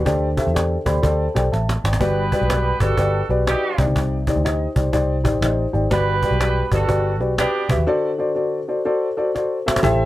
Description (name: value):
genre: uptempo 1960s-style soul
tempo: 123 BPM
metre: 4/4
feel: swing 65% on 8ths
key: G major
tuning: A4 = 445 Hz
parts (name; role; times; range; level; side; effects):
- vintage muted picked electric bass; bass; 0.0-10.1 s; G1 to E2; -21 LUFS; equal; none
- dark upright piano; accompaniment; 0.1-10.1 s; G2 to B5; -20 LUFS; left 2 dB; plate reverb
- cajon; drums; 0.1-10.0 s; none; -24 LUFS; right 1 dB; none
- mellow horn section; second line; 2.0-7.8 s; G3 to B4; -24 LUFS; right 4 dB; plate reverb
- congas; percussion; 9.8-10.0 s; none; -27 LUFS; right 5 dB; none
room: light reverb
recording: none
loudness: -17 LUFS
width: side -15 dB against mid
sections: 0.0-9.8 A section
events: upright piano fill 0.5-2.0, 5.2-5.9; drum fill 1.0-2.0, 9.3-9.8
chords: 0.1 D7sus4; 2.0 Gmaj7; 3.7 Cmadd9; 5.9 Gmaj7; 7.9 D7